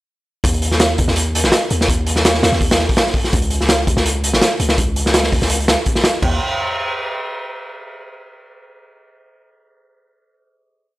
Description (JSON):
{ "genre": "drum and bass, jungle", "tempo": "166 BPM", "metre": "4/4", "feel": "swing 53% on 16ths", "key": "unclear", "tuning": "A4 = 445 Hz", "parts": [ { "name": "long sustained 808-style bass", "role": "bass", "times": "0.4-6.4 s", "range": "Ab1 to Eb2", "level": "-20 LUFS", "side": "equal", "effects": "none" }, { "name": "raw garage drum kit", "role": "drums", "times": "0.4-6.3 s", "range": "crash cymbal, hi-hat, kick drum, snare drum", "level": "-15 LUFS", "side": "equal", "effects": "none" } ], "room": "light reverb", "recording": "none", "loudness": "-14 LUFS", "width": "side -18 dB against mid", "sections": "0.4-6.2 drop; 6.2-7.7 final note", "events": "drop 0.4-6.2", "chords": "none", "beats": "| 0.44 0.80 1.17 1.53 | 1.89 2.25 2.61 2.97 | 3.33 3.69 4.06 4.42 | 4.78 5.14 5.50 5.86 | 6.22" }